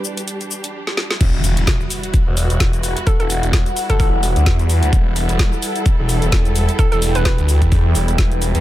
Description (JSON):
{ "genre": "bass house", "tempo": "129 BPM", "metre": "4/4", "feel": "swing 56% on 16ths", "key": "E minor", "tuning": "A4 = 440 Hz", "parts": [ { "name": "warm studio string section", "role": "sustained chords", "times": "0.0-8.6 s", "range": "G3 to A4", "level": "-27 LUFS", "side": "right 2 dB", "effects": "sidechain pumping" }, { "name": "garage drum kit", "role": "drums", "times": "0.0-8.6 s", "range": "cabasa, crash cymbal, hi-hat, snare drum", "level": "-23 LUFS", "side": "left 1 dB", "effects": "none" }, { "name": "deep dark ambient pad", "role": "texture", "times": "0.0-8.6 s", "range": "E4 to G5", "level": "-27 LUFS", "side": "left 1 dB", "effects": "chorus, built-in reverb, sidechain pumping" }, { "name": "phased detuned saw bass", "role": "bass", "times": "1.2-8.6 s", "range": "E1 to E2", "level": "-17 LUFS", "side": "equal", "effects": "phaser, overdrive, sidechain pumping" }, { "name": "electronic kick drum", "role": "drums", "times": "1.2-8.3 s", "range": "none", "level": "-16 LUFS", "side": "equal", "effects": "none" }, { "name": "impact", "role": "sound effects", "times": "1.2-3.1 s", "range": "none", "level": "-27 LUFS", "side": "left 1 dB", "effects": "none" }, { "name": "hollow square pluck", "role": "melody", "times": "3.1-7.3 s", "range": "A4 to B4", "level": "-26 LUFS", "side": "right 1 dB", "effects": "chorus, tape echo" } ], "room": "little or no reverb", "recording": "none", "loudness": "-14 LUFS", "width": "side -15 dB against mid", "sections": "0.0-1.2 A section; 1.2-8.6 B section", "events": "drum fill 0.9-1.2; drop 1.2-8.6; impact 1.2-3.1", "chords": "0.0 Em; 1.2 Emadd9", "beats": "0.28 0.74 | 1.21 1.67 2.14 2.60 | 3.07 3.53 4.00 4.46 | 4.93 5.39 5.86 6.32 | 6.79 7.25 7.72 8.18" }